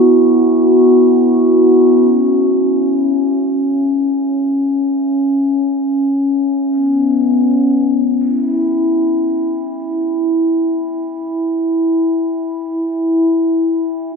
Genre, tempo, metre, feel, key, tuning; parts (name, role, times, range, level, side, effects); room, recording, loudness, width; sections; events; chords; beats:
world meditative, free-time meditation music; free time; A4 = 440 Hz
glass harmonica; solo; 0.0-14.2 s; B3 to F#4; -12 LUFS; equal; ping-pong delay
wet cathedral reverb, RT60 4.8 s; dark, warm production; -12 LUFS; side -5 dB against mid
0.0-7.4 A section; 7.4-14.2 A section
free time